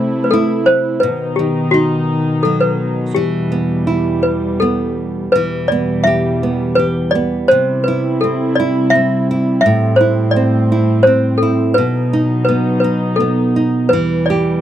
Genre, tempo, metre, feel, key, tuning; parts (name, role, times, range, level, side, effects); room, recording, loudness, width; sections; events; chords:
children's music, lullaby; 84 BPM; 3/4; rubato; E harmonic minor, E minor from 5.3 s; A4 = 440 Hz
toy piano; melody; 0.0-14.6 s; F#4 to E5; -16 LUFS; left 1 dB
nylon-string guitar; accompaniment; 0.0-14.6 s; A2 to G4; -17 LUFS; right 2 dB
dark chamber string section; sustained chords; 0.0-14.6 s; E2 to E4; -20 LUFS; left 1 dB
light reverb; dry, close 1970s-style studio recording; -13 LUFS; side -11 dB against mid
0.0-5.3 A section; 5.3-14.6 B section
0.0 Am/C; 1.0 B; 3.2 Em; 7.5 C; 9.7 Am7; 11.8 B; 13.9 Em